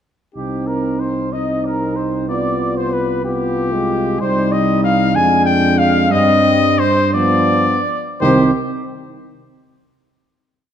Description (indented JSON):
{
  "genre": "classical, brass quintet",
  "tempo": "55-64 BPM (dotted quarters)",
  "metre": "6/8",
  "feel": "rubato",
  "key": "C minor",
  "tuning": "A4 = 440 Hz",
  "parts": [
    { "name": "clear trumpet", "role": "melody", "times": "0.3-8.5 s", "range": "G4 to Ab5", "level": "-19 LUFS", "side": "left 6 dB", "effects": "none" },
    { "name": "clear flugelhorn", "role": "second line", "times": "0.4-8.5 s", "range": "G4 to Ab5", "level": "-22 LUFS", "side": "right 4 dB", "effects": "none" },
    { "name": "mellow French horn", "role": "accompaniment", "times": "0.4-8.5 s", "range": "B3 to F4", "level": "-21 LUFS", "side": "left 2 dB", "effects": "none" },
    { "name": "warm euphonium", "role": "accompaniment", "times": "0.4-8.5 s", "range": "Eb3 to C4", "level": "-22 LUFS", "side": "right 2 dB", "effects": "none" },
    { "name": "dark tuba", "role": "bass", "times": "0.4-8.5 s", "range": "C2 to G2", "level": "-20 LUFS", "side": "right 3 dB", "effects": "none" }
  ],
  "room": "moderate concert hall reverb, RT60 1.9 s",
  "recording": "dark, warm production",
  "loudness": "-14 LUFS",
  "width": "side -9 dB against mid",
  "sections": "0.4-8.2 A section; 8.2-10.3 final chord",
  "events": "slowing down 3.3-8.2",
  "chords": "0.4 Cm; 2.3 G7/C; 4.2 Cm; 5.2 Ddim/F; 6.1 Cm/G; 7.1 G7; 8.2 Cm",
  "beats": "| 0.36 1.33 | 2.29 3.25 | 4.21 5.15 | 6.12 7.14 | 8.21"
}